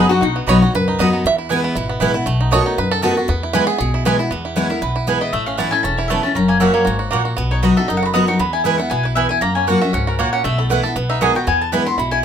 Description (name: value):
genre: bluegrass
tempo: 235 BPM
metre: 4/4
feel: swing 55% on 8ths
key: E major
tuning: A4 = 440 Hz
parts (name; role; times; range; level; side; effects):
- bluegrass banjo; melody; 0.0-12.2 s; A3 to E5; -22 LUFS; right 4 dB; none
- picked steel-string acoustic guitar; accompaniment; 0.0-12.2 s; E2 to F#4; -19 LUFS; left 2 dB; none
- mandolin; stabs; 0.0-11.8 s; A3 to B5; -20 LUFS; right 7 dB; none
- upright bass; bass; 0.0-12.2 s; E1 to F#2; -23 LUFS; equal; none
- mandolin; melody; 4.6-12.2 s; A4 to D#6; -21 LUFS; left 3 dB; none
room: moderate studio reverb, RT60 0.5 s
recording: minimal, uncompressed stereo recording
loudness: -15 LUFS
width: side -8 dB against mid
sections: 0.0-4.3 A section; 4.3-12.2 B section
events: five-string banjo solo 0.0-4.3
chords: 0.0 B; 1.2 E; 2.3 B7; 3.3 E; 5.3 Aadd9; 6.4 F#; 7.4 B; 8.4 E; 9.4 F#; 10.4 B7sus4; 11.0 B6; 11.5 E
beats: | 0.22 0.47 0.73 0.98 | 1.24 1.50 1.75 2.01 | 2.26 2.52 2.77 3.03 | 3.29 3.54 3.80 4.05 | 4.31 4.57 4.82 5.08 | 5.33 5.59 5.84 6.10 | 6.35 6.61 6.87 7.12 | 7.38 7.63 7.89 8.14 | 8.40 8.65 8.91 9.17 | 9.42 9.68 9.93 10.19 | 10.44 10.70 10.96 11.21 | 11.47 11.72 11.98 12.24